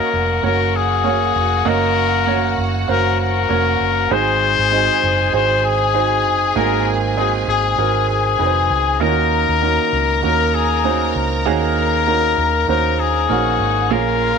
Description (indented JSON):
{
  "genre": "piano-driven pop",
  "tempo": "98 BPM",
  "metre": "4/4",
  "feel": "swing 56% on 16ths",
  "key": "unclear",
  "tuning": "A4 = 440 Hz",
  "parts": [
    { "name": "clear trumpet", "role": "melody", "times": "0.0-14.4 s", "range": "Ab4 to C5", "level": "-18 LUFS", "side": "left 10 dB", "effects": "slapback echo" },
    { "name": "clear studio violin section", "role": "second line", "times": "0.0-14.4 s", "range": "F4 to Bb5", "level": "-24 LUFS", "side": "equal", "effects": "none" },
    { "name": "warm grand piano", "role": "accompaniment", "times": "0.0-14.4 s", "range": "Ab2 to Eb5", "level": "-20 LUFS", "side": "right 12 dB", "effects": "none" },
    { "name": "vintage muted fingered electric bass", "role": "bass", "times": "0.1-14.4 s", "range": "F1 to Eb2", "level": "-22 LUFS", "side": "equal", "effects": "none" }
  ],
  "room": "moderate plate reverb, RT60 2.5 s",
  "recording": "1960s-style stereo with parts hard left and right",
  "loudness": "-14 LUFS",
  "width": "side -6 dB against mid",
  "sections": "0.0-14.4 A section",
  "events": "none",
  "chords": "0.0 Gb; 4.1 Ab7; 9.0 Ebm7",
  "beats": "0.44 1.05 | 1.66 2.27 2.89 3.50 | 4.11 4.72 5.34 5.95 | 6.56 7.17 7.79 8.40 | 9.01 9.62 10.23 10.85 | 11.46 12.07 12.68 13.30 | 13.91"
}